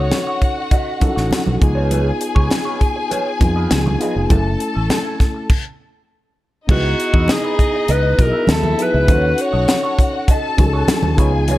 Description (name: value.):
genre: lush 1970s-style soul.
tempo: 100 BPM.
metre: 4/4.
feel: straight.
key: C# minor.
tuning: A4 = 440 Hz.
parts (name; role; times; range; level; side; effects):
bright alto saxophone; melody; 0.0-0.7, 6.7-10.3 s; F#4 to C#5; -20 LUFS; equal; none.
warm studio string section; second line; 0.0-11.6 s; D#4 to A5; -24 LUFS; left 2 dB; none.
mellow tine electric piano; accompaniment; 0.0-11.6 s; A3 to A4; -23 LUFS; left 1 dB; none.
electric guitar through a small old amp; riff; 0.0-11.6 s; A3 to E5; -28 LUFS; right 2 dB; wah.
fingered electric bass; bass; 0.0-11.6 s; E#1 to E#2; -18 LUFS; equal; none.
tight funk drum kit; drums; 0.1-11.6 s; crash cymbal, hi-hat, kick drum, snare drum; -17 LUFS; equal; none.
congas; percussion; 0.1-11.6 s; none; -24 LUFS; right 2 dB; none.
room: light reverb, studio reverb.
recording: none.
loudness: -14 LUFS.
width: side -16 dB against mid.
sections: 0.0-6.7 A section; 6.7-11.6 A section.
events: stop 5.5-6.7.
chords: 0.0 D#m7b5; 1.6 C#7; 4.3 F#m9 (rootless); 6.7 C#m9; 9.1 D#m7b5.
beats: 0.12 0.72 1.32 | 1.91 2.51 3.11 3.71 | 4.30 4.90 5.50 6.10 | 6.69 7.29 7.89 8.49 | 9.08 9.68 10.28 10.88 | 11.47.